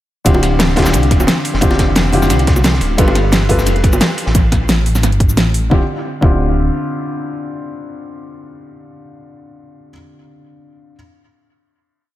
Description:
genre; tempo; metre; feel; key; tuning
liquid drum and bass; 176 BPM; 4/4; swing 53% on 16ths; D dorian; A4 = 442 Hz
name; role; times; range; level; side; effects
felt-muted upright piano; accompaniment; 0.2-11.0 s; D3 to B4; -18 LUFS; left 1 dB; analog delay
dark detuned saw bass; bass; 0.3-6.7 s; D1 to C2; -16 LUFS; equal; none
crunchy breakbeat drum kit; drums; 0.3-4.3 s; ride cymbal, snare drum; -23 LUFS; equal; high-pass filter on cymbals, high-pass filter on snare, high-pass filter on room, analog delay
electronic kick drum; drums; 0.3-6.3 s; none; -14 LUFS; equal; overdrive
pop drum kit; drums; 0.3-5.6 s; hi-hat, shaker, snare drum; -17 LUFS; equal; overdrive, analog delay
bongos; percussion; 0.3-4.0 s; none; -25 LUFS; right 1 dB; none
room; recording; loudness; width
light reverb, small room ambience; echo-heavy mix; -11 LUFS; side -14 dB against mid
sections
0.3-5.7 drop; 5.7-8.4 final chord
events
drop 0.3-5.7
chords
0.3 Dm11; 3.0 G9; 4.3 Gsus2; 5.7 Dm11

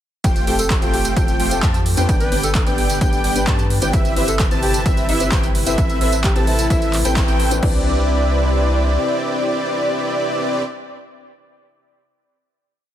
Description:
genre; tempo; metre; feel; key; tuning
EDM, festival progressive house; 130 BPM; 4/4; straight; C major; A4 = 440 Hz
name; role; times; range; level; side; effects
lush unison pad; sustained chords; 0.2-10.6 s; C3 to B4; -28 LUFS; equal; chorus, sidechain pumping
wide unison lead; arpeggios; 0.2-10.6 s; D5 to A5; -24 LUFS; equal; sidechain pumping, tape echo
dense compressed supersaw; riff; 0.2-10.6 s; A3 to A5; -24 LUFS; right 1 dB; sidechain pumping, tape echo
saturated sub bass; bass; 0.2-9.0 s; F1 to G2; -22 LUFS; equal; sidechain pumping
big-room dance drum kit; drums; 0.2-7.7 s; crash cymbal, handclaps, hi-hat, tambourine; -25 LUFS; right 2 dB; overdrive
electronic kick drum; drums; 0.2-7.7 s; none; -19 LUFS; equal; overdrive
dark baby grand piano; accompaniment; 0.5-10.6 s; B3 to B4; -27 LUFS; left 5 dB; sidechain pumping, tape echo
breathy alto saxophone; melody; 0.6-7.1 s; E4 to B4; -27 LUFS; equal; tape echo
room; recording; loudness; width
light reverb, digital ambience; none; -15 LUFS; side -11 dB against mid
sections
0.2-7.6 drop; 7.6-11.3 final chord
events
drop 0.2-7.6; band accent 7.2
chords
0.2 Fadd9; 2.1 G; 3.9 Cmaj7/G; 5.8 Amadd9; 7.6 Cmaj9

